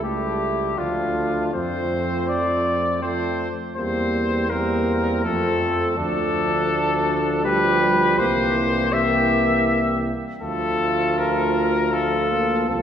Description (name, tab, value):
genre	classical, brass quintet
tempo	81 BPM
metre	3/4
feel	straight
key	unclear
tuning	A4 = 440 Hz
part	clear trumpet	melody	0.0-12.8 s	F4 to E5	-22 LUFS	left 3 dB	none
part	warm flugelhorn	second line	0.0-12.8 s	C4 to G4	-28 LUFS	right 5 dB	none
part	mellow French horn	accompaniment	0.0-12.8 s	G3 to C4	-27 LUFS	left 1 dB	none
part	mellow trombone	accompaniment	0.0-12.8 s	E3 to G3	-27 LUFS	right 3 dB	none
part	mellow bass trombone	bass	0.0-12.8 s	C2 to F2	-27 LUFS	right 1 dB	none
room	wet concert hall reverb, RT60 2.5 s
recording	recorded in a church or concert hall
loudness	-19 LUFS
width	side -8 dB against mid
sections	0.0-12.8 A section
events	none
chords	0.0 A7/C#; 0.8 Dm; 1.6 F; 3.8 C7/E; 5.2 F; 6.0 Dm; 7.4 G7/D; 8.2 C7; 10.4 Dm